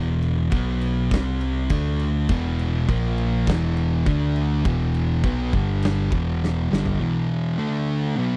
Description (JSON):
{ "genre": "stoner and doom metal", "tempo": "102 BPM", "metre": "4/4", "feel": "straight", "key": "E minor", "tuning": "A4 = 439 Hz", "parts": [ { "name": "thick fuzz guitar", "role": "riff", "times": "0.0-8.4 s", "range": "E2 to D4", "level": "-26 LUFS", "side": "equal", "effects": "distortion" }, { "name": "picked electric bass", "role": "bass", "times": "0.0-7.0 s", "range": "E1 to D2", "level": "-28 LUFS", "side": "equal", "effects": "overdrive" }, { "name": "oversized low-tuned drum kit", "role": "drums", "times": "0.2-7.0 s", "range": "crash cymbal, kick drum, snare drum, toms", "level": "-30 LUFS", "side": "equal", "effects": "none" }, { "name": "thick fuzz guitar", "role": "riff", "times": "2.3-8.4 s", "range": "E2 to D4", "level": "-31 LUFS", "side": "equal", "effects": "distortion" } ], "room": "little or no reverb", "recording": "dry, close 1970s-style studio recording", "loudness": "-23 LUFS", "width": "mono", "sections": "0.0-7.0 A section; 7.0-8.4 B section", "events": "drum fill 6.4-7.0", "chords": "0.0 E5; 0.5 B5; 1.1 C5; 1.7 D5; 2.3 E5; 2.9 A#5; 3.5 E5; 4.1 D5; 4.7 E5; 5.5 G5; 6.1 Em; 7.0 E5; 7.6 D5", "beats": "0.53 1.12 1.71 | 2.30 2.89 3.48 4.07 | 4.65 5.24 5.83 6.42 | 7.00 7.59 8.18" }